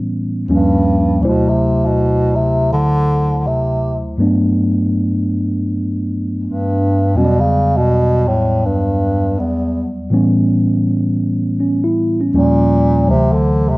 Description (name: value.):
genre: hip hop.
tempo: 81 BPM.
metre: 4/4.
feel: swing 63% on 16ths.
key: unclear.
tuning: A4 = 442 Hz.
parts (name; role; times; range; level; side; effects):
mellow tine electric piano; accompaniment; 0.0-13.8 s; D2 to D5; -15 LUFS; equal; medium stereo tremolo, cassette tape.
breathy bass clarinet; melody; 0.5-13.8 s; E2 to D3; -15 LUFS; equal; cassette tape.
room: moderate spring reverb, RT60 1.1 s, small room ambience.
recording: home recording on cassette.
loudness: -13 LUFS.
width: side -22 dB against mid.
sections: 0.0-13.8 A section.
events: none.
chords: 0.5 D#9; 1.2 D9; 4.2 Gmaj9; 7.2 Em7; 10.1 A7; 12.3 D#9; 13.1 D9.